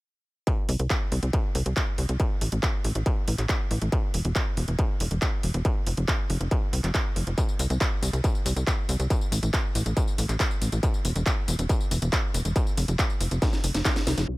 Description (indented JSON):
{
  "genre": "uplifting trance",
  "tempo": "139 BPM",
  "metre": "4/4",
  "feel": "straight",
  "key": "unclear",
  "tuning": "A4 = 440 Hz",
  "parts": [
    { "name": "electronic kick drum", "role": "drums", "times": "0.5-13.9 s", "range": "none", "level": "-25 LUFS", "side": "equal", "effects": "distortion, overdrive, studio reverb" },
    { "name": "techno drum kit", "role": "drums", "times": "0.5-14.4 s", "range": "crash cymbal, handclaps, hi-hat, snare drum, tambourine", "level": "-31 LUFS", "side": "equal", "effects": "overdrive, sidechain pumping on hats, studio reverb, sidechain pumping on perc, sidechain pumping on cymbals" },
    { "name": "tight sequencer bass", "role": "bass", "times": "0.7-14.4 s", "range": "E1 to C2", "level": "-26 LUFS", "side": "equal", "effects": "sidechain pumping" }
  ],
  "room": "digital ambience",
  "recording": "low-pass filter",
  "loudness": "-23 LUFS",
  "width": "side -20 dB against mid",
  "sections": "0.5-14.3 A section",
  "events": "drum fill 13.4-14.3; band accent 14.2",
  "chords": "none"
}